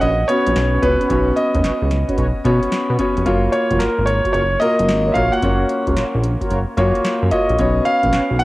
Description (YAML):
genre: R&B, new jack swing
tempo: 111 BPM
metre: 4/4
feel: swing 66% on 16ths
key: F# major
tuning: A4 = 441 Hz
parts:
  - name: warm concert grand piano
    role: melody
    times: 0.0-8.4 s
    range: A#4 to F#5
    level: -19 LUFS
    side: equal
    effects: cassette tape
  - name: clear baby grand piano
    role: accompaniment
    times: 0.0-8.4 s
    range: A#3 to C#5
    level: -20 LUFS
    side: left 1 dB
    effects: cassette tape
  - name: mellow synth brass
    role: stabs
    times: 0.0-8.2 s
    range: C#4 to C#5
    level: -26 LUFS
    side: right 1 dB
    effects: chorus, cassette tape
  - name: fat analog bass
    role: bass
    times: 0.0-8.4 s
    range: E#1 to B2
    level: -19 LUFS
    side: equal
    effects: none
  - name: booming analog drum machine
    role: drums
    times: 0.0-8.4 s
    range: handclaps, hi-hat, kick drum, snare drum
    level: -25 LUFS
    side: equal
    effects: overdrive, cassette tape
room: moderate spring reverb, RT60 1.9 s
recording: home recording on cassette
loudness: -15 LUFS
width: side -18 dB against mid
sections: 0.0-8.4 A section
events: none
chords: 0.0 Bsus2; 3.3 F#maj7; 7.6 Bsus2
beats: 0.02 0.56 | 1.10 1.64 2.18 2.72 | 3.26 3.80 4.34 4.88 | 5.42 5.96 6.50 7.04 | 7.59 8.13